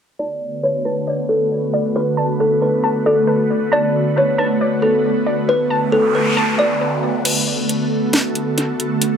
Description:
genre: hip hop, atmospheric cloud-rap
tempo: 136 BPM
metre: 4/4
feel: half-time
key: B minor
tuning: A4 = 440 Hz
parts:
  - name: kalimba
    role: melody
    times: 0.2-7.2 s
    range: A4 to D5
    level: -18 LUFS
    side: left 1 dB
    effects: low-pass filter, analog delay
  - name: ethereal airy pad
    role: sustained chords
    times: 0.2-9.2 s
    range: D3 to B4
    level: -19 LUFS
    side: right 1 dB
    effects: ensemble chorus, built-in reverb, low-pass filter
  - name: warbly dusty pluck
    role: arpeggios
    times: 0.2-7.3 s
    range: B4 to A5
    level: -24 LUFS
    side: left 1 dB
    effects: chorus, phaser, low-pass filter, analog delay
  - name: noise sweep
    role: sound effects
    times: 5.7-7.3 s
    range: none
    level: -23 LUFS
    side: right 1 dB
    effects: none
  - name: trap drum kit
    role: drums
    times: 7.3-9.1 s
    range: crash cymbal, hi-hat, snare drum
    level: -19 LUFS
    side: left 1 dB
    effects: analog delay
room: moderate plate reverb, RT60 1.1 s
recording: echo-heavy mix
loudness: -15 LUFS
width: side -7 dB against mid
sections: 0.2-7.3 A section; 7.3-9.2 B section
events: filter sweep 0.2-7.3; noise sweep 5.7-7.3; kick muted 7.3-9.2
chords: 0.2 Bm7

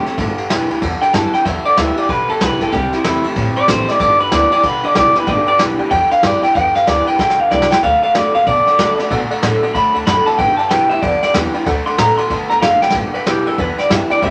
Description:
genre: rockabilly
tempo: 188 BPM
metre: 4/4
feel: swing 62% on 8ths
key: G major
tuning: A4 = 439 Hz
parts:
  - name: electric guitar through a small old amp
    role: melody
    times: 0.0-14.3 s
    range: E4 to C6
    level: -16 LUFS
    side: equal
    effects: none
  - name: picked steel-string acoustic guitar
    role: accompaniment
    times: 0.0-14.3 s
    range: G2 to G4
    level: -27 LUFS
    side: equal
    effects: none
  - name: electric guitar through a small old amp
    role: riff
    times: 0.0-14.3 s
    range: G2 to B3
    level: -24 LUFS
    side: equal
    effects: none
  - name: upright bass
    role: bass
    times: 0.1-14.3 s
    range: F#1 to D3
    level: -26 LUFS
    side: equal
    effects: none
  - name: vintage brush drum kit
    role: drums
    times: 0.1-14.3 s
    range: kick drum, ride cymbal, snare drum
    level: -24 LUFS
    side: equal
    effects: none
  - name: honky-tonk upright piano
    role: accompaniment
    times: 5.3-14.3 s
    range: A4 to G5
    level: -29 LUFS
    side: equal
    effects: none
room: moderate studio reverb, RT60 0.6 s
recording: none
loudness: -15 LUFS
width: mono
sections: 0.0-12.9 A section; 12.9-14.3 B section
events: clean electric guitar solo 0.0-12.9; drum fill 7.2-7.8, 12.8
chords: 0.2 G; 2.7 C; 4.0 G; 7.8 D; 10.4 G; 11.7 D; 12.9 G

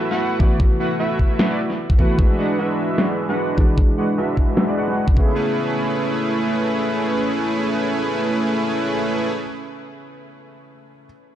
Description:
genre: future bass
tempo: 151 BPM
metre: 4/4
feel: swing 55% on 16ths, half-time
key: A major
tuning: A4 = 444 Hz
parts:
  - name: felt-muted upright piano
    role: accompaniment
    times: 0.0-11.1 s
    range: C#3 to G#4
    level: -26 LUFS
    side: equal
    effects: sidechain pumping, tape echo
  - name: soft supersaw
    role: riff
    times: 0.0-9.3 s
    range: G#3 to F#5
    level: -21 LUFS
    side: equal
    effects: cassette tape, sidechain pumping, low-pass filter, tape echo
  - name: electronic snare drum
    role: drums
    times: 0.1-5.0 s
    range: none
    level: -22 LUFS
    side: equal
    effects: low-pass filter on snare, low-pass filter on room
  - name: electronic kick drum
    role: drums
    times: 0.4-5.3 s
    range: none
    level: -16 LUFS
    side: equal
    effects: none
room: light reverb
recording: dark, warm production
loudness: -17 LUFS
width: side -11 dB against mid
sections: 0.0-5.4 A section; 5.4-8.5 B section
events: filter sweep on drum 0.0-5.4; filter sweep on supersaw synth 0.0-5.4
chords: 0.0 B7sus4; 2.2 E9; 5.2 Amaj9

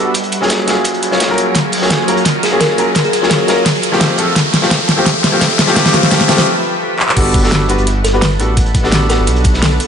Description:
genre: liquid drum and bass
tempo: 171 BPM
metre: 4/4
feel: straight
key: unclear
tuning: A4 = 440 Hz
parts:
  - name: bright grand piano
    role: accompaniment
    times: 0.0-9.9 s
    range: F3 to C#5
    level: -16 LUFS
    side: left 1 dB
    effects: dub echo
  - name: shimmering ambient pad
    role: sustained chords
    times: 0.0-9.9 s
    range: F3 to A5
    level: -20 LUFS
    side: equal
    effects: chorus, built-in reverb, sidechain pumping
  - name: riser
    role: sound effects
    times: 0.2-6.5 s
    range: none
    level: -20 LUFS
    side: left 2 dB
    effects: none
  - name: crunchy breakbeat drum kit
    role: drums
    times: 0.1-9.9 s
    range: hi-hat, snare drum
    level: -21 LUFS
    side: equal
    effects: high-pass filter on hats, high-pass filter on snare, high-pass filter on room
  - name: electronic kick drum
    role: drums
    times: 0.1-9.5 s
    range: none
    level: -16 LUFS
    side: equal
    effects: high-pass filter on kick
  - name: pop drum kit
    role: drums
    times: 0.1-9.9 s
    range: crash cymbal, handclaps, hi-hat, snare drum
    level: -15 LUFS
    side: equal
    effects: none
  - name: buzzing kalimba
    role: melody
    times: 2.4-3.6, 8.0-9.9 s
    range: G#4 to B4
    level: -20 LUFS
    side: equal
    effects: low-pass filter, tape echo
  - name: smooth gliding synth bass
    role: bass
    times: 7.2-9.8 s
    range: G1 to B1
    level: -16 LUFS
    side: equal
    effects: none
room: moderate lush hall reverb, RT60 2.1 s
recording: nothing above 10.4 kHz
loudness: -10 LUFS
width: side -7 dB against mid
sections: 0.0-7.2 A section; 7.2-9.9 B section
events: build-up 0.0-7.2; filter sweep on kalimba 0.0-7.2; riser 0.2-6.5; drum fill 1.6-6.5, 7.0; break 6.5-7.2; drop 7.2-9.9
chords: 0.1 F#maj9; 3.7 Fmaj9; 7.2 Gmaj9

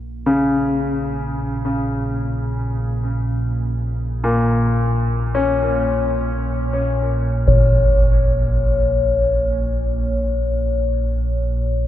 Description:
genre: dark ambient drone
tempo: free time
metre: none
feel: none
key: Bb minor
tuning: A4 = 440 Hz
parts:
  - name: warm grand piano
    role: arpeggios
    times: 0.0-11.9 s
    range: Bb2 to Db4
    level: -21 LUFS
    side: left 2 dB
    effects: analog delay
  - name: deep rumbling drone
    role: drone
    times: 0.0-11.9 s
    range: Bb1 to Bb2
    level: -22 LUFS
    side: right 1 dB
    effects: built-in reverb, wide subtle chorus
  - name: concert bass drum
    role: percussion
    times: 7.5-7.7 s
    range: none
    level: -18 LUFS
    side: right 1 dB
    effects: low-pass filter on kick
  - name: bronze singing bowl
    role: texture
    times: 7.5-11.9 s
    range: Db5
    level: -21 LUFS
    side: left 4 dB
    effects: none
room: moderate huge ambient reverb, RT60 8.3 s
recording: dreamy mix soaked in reverb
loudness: -17 LUFS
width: side -12 dB against mid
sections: 0.0-11.9 A section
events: fade-in on synth drone 0.0-11.9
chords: 0.0 Bbm

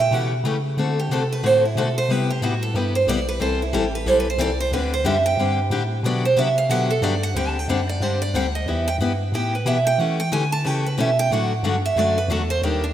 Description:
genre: acoustic string swing (jazz manouche)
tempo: 182 BPM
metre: 4/4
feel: swing 60% on 8ths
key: unclear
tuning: A4 = 440 Hz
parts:
  - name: picked steel-string acoustic guitar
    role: melody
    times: 0.0-12.9 s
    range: D4 to A5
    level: -22 LUFS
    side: right 3 dB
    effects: none
  - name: bell-like tine electric piano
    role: bass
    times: 0.0-12.9 s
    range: A1 to E3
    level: -24 LUFS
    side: equal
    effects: none
  - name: picked steel-string acoustic guitar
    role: accompaniment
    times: 0.1-12.8 s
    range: C3 to A4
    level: -24 LUFS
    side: left 4 dB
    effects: none
room: moderate lush hall reverb, RT60 2.2 s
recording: rough home demo mix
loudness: -19 LUFS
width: side -11 dB against mid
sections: 0.0-7.4 A section; 7.4-12.9 A section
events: steel-string acoustic guitar solo 0.0-12.9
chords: 0.0 A7; 0.8 D7; 2.1 Cmaj7; 3.4 Am7; 4.7 D7sus4; 6.0 Gmaj7; 7.4 D7sus4; 8.7 Em; 10.0 A7; 11.3 D

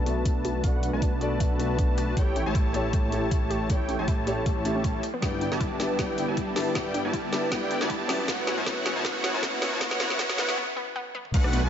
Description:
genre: future bass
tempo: 157 BPM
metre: 4/4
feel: swing 54% on 16ths, half-time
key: unclear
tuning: A4 = 440 Hz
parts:
  - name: felt-muted upright piano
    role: accompaniment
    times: 0.0-11.4 s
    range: F#3 to E5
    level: -32 LUFS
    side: left 2 dB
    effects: sidechain pumping, tape echo
  - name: big bright polysynth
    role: riff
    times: 0.0-11.7 s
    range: A3 to A5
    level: -29 LUFS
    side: right 1 dB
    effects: chorus, sidechain pumping, tape echo
  - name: wide detuned saw bass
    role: bass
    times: 0.0-11.7 s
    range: F#1 to B1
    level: -33 LUFS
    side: equal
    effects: chorus, sidechain pumping
  - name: riser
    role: sound effects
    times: 3.1-10.6 s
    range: none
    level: -38 LUFS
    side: equal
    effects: none
  - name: wide unison pluck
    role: arpeggios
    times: 0.1-11.6 s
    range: A3 to D5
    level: -37 LUFS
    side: left 1 dB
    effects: none
  - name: trap drum kit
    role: drums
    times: 0.1-11.6 s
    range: crash cymbal, hi-hat, rim click, snare drum, toms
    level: -32 LUFS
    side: equal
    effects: none
  - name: electronic kick drum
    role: drums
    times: 0.3-11.4 s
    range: none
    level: -27 LUFS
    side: equal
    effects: none
  - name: wide unison pluck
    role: arpeggios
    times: 11.3-11.7 s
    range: F#5 to A5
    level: -35 LUFS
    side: left 1 dB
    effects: phaser, sidechain pumping
room: moderate lush hall reverb, RT60 1.7 s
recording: high-pass filter, nothing above 7.7 kHz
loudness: -24 LUFS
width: side -9 dB against mid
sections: 0.0-11.3 A section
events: build-up 0.0-11.3; filter sweep on analog polysynth 0.0-11.3; filter sweep 0.0-11.3; riser 3.1-10.6; drum fill 5.2-10.6, 11.2; break 10.6-11.3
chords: 0.0 Bm7; 2.2 A7; 5.0 G6; 8.1 F#m7

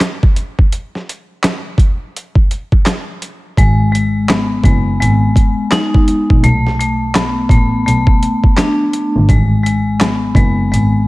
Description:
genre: hip hop, boom-bap hip-hop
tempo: 84 BPM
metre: 4/4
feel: swing 63% on 16ths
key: G# minor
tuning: A4 = 443 Hz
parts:
  - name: boom bap sampler-style drum kit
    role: drums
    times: 0.0-10.9 s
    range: handclaps, hi-hat, kick drum, snare drum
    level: -13 LUFS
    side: equal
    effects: overdrive
  - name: vibraphone with hard mallets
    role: accompaniment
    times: 3.6-11.1 s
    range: G#3 to D#4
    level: -15 LUFS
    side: left 2 dB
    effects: cassette tape, high-pass filter, low-pass filter
  - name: muted double bass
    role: bass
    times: 3.6-11.0 s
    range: F#1 to B1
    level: -15 LUFS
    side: equal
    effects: none
room: light reverb, small room reverb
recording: none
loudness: -11 LUFS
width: side -20 dB against mid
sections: 0.0-11.1 A section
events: break 0.0-3.6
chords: 0.0 N.C.; 3.6 G#m7; 6.4 Bm7; 9.3 G#m7

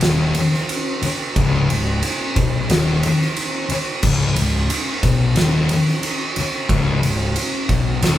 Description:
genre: stoner and doom metal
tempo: 90 BPM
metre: 4/4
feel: straight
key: unclear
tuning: A4 = 439 Hz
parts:
  - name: thick fuzz guitar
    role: riff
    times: 0.0-8.2 s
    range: C#2 to B2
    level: -19 LUFS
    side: left 3 dB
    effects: distortion
  - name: fuzz picked electric bass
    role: bass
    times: 0.0-8.2 s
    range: C#1 to B1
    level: -24 LUFS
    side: right 1 dB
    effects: overdrive
  - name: oversized low-tuned drum kit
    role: drums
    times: 0.0-8.2 s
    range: crash cymbal, kick drum, ride cymbal, snare drum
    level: -20 LUFS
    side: right 1 dB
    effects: none
room: light reverb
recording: band playing live in one room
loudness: -16 LUFS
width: side -13 dB against mid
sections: 0.0-8.2 A section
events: none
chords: none

